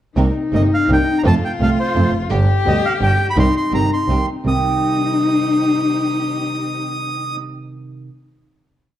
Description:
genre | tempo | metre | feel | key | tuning
tango | 168 BPM | 3/4 | rubato | C dorian | A4 = 438 Hz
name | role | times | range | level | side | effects
warm cello | second line | 0.2-7.4 s | Eb4 to G4 | -20 LUFS | left 5 dB | none
nylon-string guitar | accompaniment | 0.2-8.1 s | B2 to G4 | -22 LUFS | right 3 dB | none
clear symphonic string section | stabs | 0.2-7.3 s | B3 to Bb4 | -31 LUFS | right 3 dB | none
clear double bass | bass | 0.2-4.6 s | F1 to F2 | -18 LUFS | right 1 dB | none
bandoneon | melody | 0.5-7.4 s | C5 to Eb6 | -22 LUFS | right 2 dB | none
room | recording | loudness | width
wet large studio reverb, RT60 1.4 s | dark, warm production | -15 LUFS | side -12 dB against mid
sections
0.2-4.5 A section; 4.5-6.6 final chord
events
none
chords
0.2 Cm7; 1.2 F; 2.3 G; 3.4 Cm

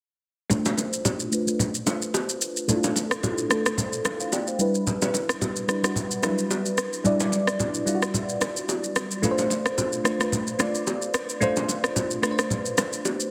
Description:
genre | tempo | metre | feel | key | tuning
amapiano | 110 BPM | 4/4 | swing 55% on 16ths | D dorian | A4 = 440 Hz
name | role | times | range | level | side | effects
bell-like FM electric piano | accompaniment | 0.5-13.3 s | F#3 to G5 | -28 LUFS | equal | chorus, phaser, low-pass filter
electronic shaker and rim click | drums | 0.5-13.3 s | none | -29 LUFS | equal | soft clipping on snare
congas and bongos | percussion | 0.5-13.2 s | none | -31 LUFS | equal | none
room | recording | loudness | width
moderate echo chamber reverb, RT60 1.7 s, digital ambience | dense, heavily limited modern master | -25 LUFS | mono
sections
0.5-13.3 A section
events
filter sweep on FM electric piano 0.5-13.3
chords
0.5 Dm7; 4.6 Em7; 9.2 Dm7

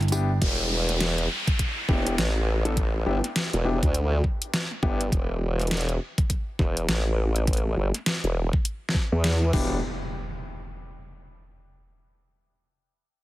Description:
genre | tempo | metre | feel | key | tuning
glitch hop | 102 BPM | 4/4 | swing 60% on 16ths | E minor | A4 = 440 Hz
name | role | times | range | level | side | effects
pop drum kit | drums | 0.0-9.7 s | crash cymbal, hi-hat, snare drum, tambourine | -29 LUFS | equal | overdrive
dark grand piano | stabs | 0.1-5.0, 9.5-9.8 s | B3 to A4 | -31 LUFS | left 2 dB | sidechain pumping, dub echo
formant-sweep wobble bass | bass | 0.4-9.8 s | E1 to E2 | -24 LUFS | equal | chorus, tube saturation
electronic kick drum | drums | 0.4-9.7 s | none | -25 LUFS | equal | overdrive
downlifter and impact | sound effects | 0.4-5.1, 9.5-11.9 s | none | -32 LUFS | equal | none
room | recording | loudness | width
digital ambience | heavily compressed radio sound, multiband compression | -23 LUFS | side -16 dB against mid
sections
0.4-9.8 A section; 9.8-12.2 B section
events
break 0.0-0.4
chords
0.4 Em7; 9.8 N.C.

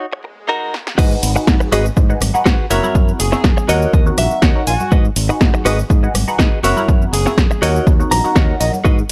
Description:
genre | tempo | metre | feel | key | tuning
filtered disco house | 122 BPM | 4/4 | swing 53% on 16ths | G# minor | A4 = 440 Hz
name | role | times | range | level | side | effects
direct-recorded clean electric guitar | riff | 0.0-9.1 s | D#4 to A#5 | -22 LUFS | equal | sidechain pumping
swell | sound effects | 0.2-1.0 s | none | -42 LUFS | equal | none
punchy analog drum machine | drums | 0.7-9.1 s | crash cymbal, hi-hat, rim click, shaker, snare drum | -23 LUFS | equal | overdrive, sidechain pumping on hats, studio reverb, sidechain pumping on cymbals, sidechain pumping on perc
funky polysynth comp | accompaniment | 1.0-8.8 s | D#3 to F#5 | -24 LUFS | equal | chorus, phaser, sidechain pumping
modern bright fingered electric bass | bass | 1.0-9.0 s | F#1 to G#2 | -22 LUFS | equal | sidechain pumping, high-pass filter
electronic kick drum | drums | 1.0-9.0 s | none | -16 LUFS | equal | overdrive, studio reverb
tambourine and congas | percussion | 1.0-9.1 s | none | -31 LUFS | equal | sidechain pumping on perc
warm horn section | melody | 3.2-7.6 s | F#4 to G#4 | -26 LUFS | equal | sidechain pumping
room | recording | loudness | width
digital ambience | dry, gritty hardware recording, high-pass filter | -15 LUFS | mono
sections
1.0-9.1 A section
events
break 0.0-1.0; swell 0.2-1.0; drum fill 0.7; drop 1.0-9.1; clean electric guitar fill 3.4-4.9, 7.9-8.9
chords
0.0 D#m; 1.0 G#m7; 2.7 F#7; 3.7 D#m7; 4.9 G#m7; 6.6 F#7; 7.6 D#m7

